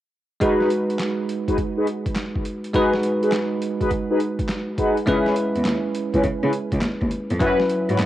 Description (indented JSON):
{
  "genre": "R&B, new jack swing",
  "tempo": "103 BPM",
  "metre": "4/4",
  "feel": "swing 66% on 16ths",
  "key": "G# minor",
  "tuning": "A4 = 441 Hz",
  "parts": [
    { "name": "bell-like tine electric piano", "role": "accompaniment", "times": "0.4-8.1 s", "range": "F#3 to B4", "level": "-23 LUFS", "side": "right 1 dB", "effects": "auto-pan, cassette tape" },
    { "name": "mellow synth brass", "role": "stabs", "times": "0.4-8.0 s", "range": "C#4 to B4", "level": "-23 LUFS", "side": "left 1 dB", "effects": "chorus, cassette tape" },
    { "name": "boom bap sampler-style drum kit", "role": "drums", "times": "0.4-8.1 s", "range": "handclaps, hi-hat, kick drum, snare drum", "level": "-27 LUFS", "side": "equal", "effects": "overdrive" },
    { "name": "rich cello", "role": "bass", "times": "5.1-8.1 s", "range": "C#2 to C#3", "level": "-24 LUFS", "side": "equal", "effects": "none" }
  ],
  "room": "moderate spring reverb, RT60 2.5 s",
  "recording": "home recording on cassette",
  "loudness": "-19 LUFS",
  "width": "side -13 dB against mid",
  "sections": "0.4-8.1 A section",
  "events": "none",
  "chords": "0.4 G#m7; 5.1 C#m7; 7.4 F#7sus4",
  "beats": "| 0.41 1.00 1.58 2.16 | 2.74 3.33 3.91 4.49 | 5.07 5.66 6.24 6.82 | 7.40 7.99"
}